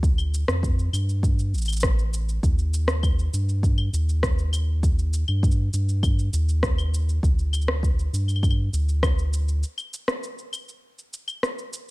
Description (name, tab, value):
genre	folktronica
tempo	100 BPM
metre	4/4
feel	straight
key	unclear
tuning	A4 = 441 Hz
part	round analog bass	bass	0.0-9.6 s	A1 to G2	-22 LUFS	equal	none
part	electronic kick drum	drums	0.0-9.2 s	none	-22 LUFS	equal	studio reverb
part	electronic shaker, claves and rim click	drums	0.0-11.9 s	none	-29 LUFS	left 1 dB	studio reverb
room	little or no reverb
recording	none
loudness	-21 LUFS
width	side -20 dB against mid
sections	0.0-11.9 A section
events	break 9.6-11.9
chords	none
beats	| 0.03 0.63 1.23 1.83 | 2.43 3.03 3.63 4.23 | 4.83 5.43 6.03 6.63 | 7.23 7.83 8.43 9.03 | 9.63 10.23 10.83 11.43